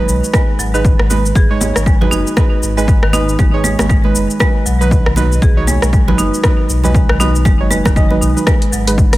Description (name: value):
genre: afro house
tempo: 118 BPM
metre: 4/4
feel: swing 59% on 16ths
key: G# minor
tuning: A4 = 440 Hz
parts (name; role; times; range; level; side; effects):
- deep mellow chord stab; stabs; 0.0-9.2 s; F#3 to D#5; -19 LUFS; right 4 dB; chorus, sidechain pumping, tape echo
- warm sub bass; bass; 0.0-9.2 s; F#1 to B1; -17 LUFS; equal; sidechain pumping
- deep house drum kit; drums; 0.1-9.2 s; hi-hat, rim click, shaker; -20 LUFS; left 1 dB; overdrive, small room ambience
- marimba with medium hard mallets; arpeggios; 0.3-9.0 s; D#3 to G#4; -20 LUFS; equal; sidechain pumping, tape echo
- electronic kick drum; drums; 0.3-9.1 s; none; -13 LUFS; equal; overdrive, small room ambience
- congas; percussion; 0.3-8.6 s; none; -23 LUFS; right 3 dB; none
room: little or no reverb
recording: none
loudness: -10 LUFS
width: side -17 dB against mid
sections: 0.0-9.2 A section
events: none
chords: 0.0 G#m